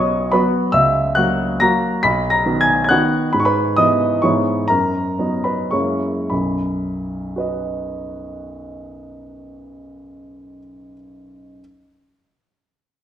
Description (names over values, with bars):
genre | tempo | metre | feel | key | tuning
classical, romantic triple-time dance for piano with dotted rhythms | 97-148 BPM | 3/4 | rubato | B major | A4 = 440 Hz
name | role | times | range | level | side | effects
warm grand piano | solo | 0.0-11.6 s | B1 to B6 | -16 LUFS | equal | none
room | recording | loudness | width
wet recital hall reverb, RT60 1.5 s | none | -16 LUFS | side -10 dB against mid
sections
0.0-6.3 A section; 6.3-9.5 B section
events
slowing down 2.7-6.3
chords
0.0 B; 0.7 F#7/C#; 2.0 B; 3.3 E/G#; 4.2 C#m7/G#; 4.7 B/F#; 5.7 F#9; 6.3 B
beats
0.32 | 0.73 1.17 1.62 | 2.04 2.46 2.90 | 3.32 3.77 4.23 | 4.70 5.20 5.73 | 6.32 6.85 7.37 | 7.87 8.42 8.96